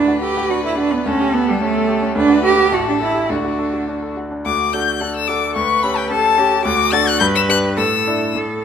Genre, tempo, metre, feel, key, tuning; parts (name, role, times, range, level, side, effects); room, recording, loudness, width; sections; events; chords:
quick classical-period movement for piano trio; 108 BPM; 2/4; rubato; D major; A4 = 440 Hz
clear violin; melody; 0.0-8.3 s; F#4 to A6; -19 LUFS; left 8 dB
clear cello; second line; 0.0-8.6 s; G3 to B4; -18 LUFS; right 4 dB
clear concert grand piano; accompaniment; 0.0-8.6 s; A1 to D5; -21 LUFS; left 1 dB
moderate recital hall reverb, RT60 1.5 s; -15 LUFS; side -8 dB against mid
0.0-4.5 A section; 4.5-8.6 B section
0.0 D; 1.1 A7/D; 2.2 D; 2.7 A5; 3.3 D; 5.6 A7/D; 6.7 D; 7.2 G; 7.8 Asus4